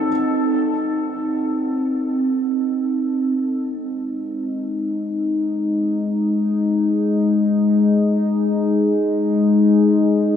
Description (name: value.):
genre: ambient.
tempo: free time.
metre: none.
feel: none.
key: Ab major.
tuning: A4 = 440 Hz.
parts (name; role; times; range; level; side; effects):
analog drone; drone; 0.0-10.4 s; Ab3 to Eb4; -17 LUFS; left 1 dB; chorus.
room: wet huge ambient reverb, RT60 8.6 s.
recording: none.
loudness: -17 LUFS.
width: side -9 dB against mid.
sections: 0.0-3.4 A section; 3.4-10.4 B section.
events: none.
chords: 0.1 Cm; 3.4 Ab5.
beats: free time.